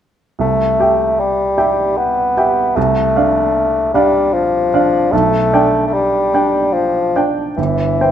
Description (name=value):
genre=classical, romantic duo for bassoon and grand piano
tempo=76 BPM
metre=3/4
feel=rubato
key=C major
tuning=A4 = 441 Hz
part: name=clear bassoon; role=melody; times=0.4-8.1 s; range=E3 to B3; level=-14 LUFS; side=left 2 dB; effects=none
part: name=clear baby grand piano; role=accompaniment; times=0.4-8.1 s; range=G1 to G5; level=-16 LUFS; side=right 4 dB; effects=none
room=moderate recital hall reverb, RT60 1.4 s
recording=close, detailed microphones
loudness=-12 LUFS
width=side -9 dB against mid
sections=0.4-8.1 A section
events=none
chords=0.4 C; 2.8 Dm7/C; 5.1 G/B; 7.6 C/G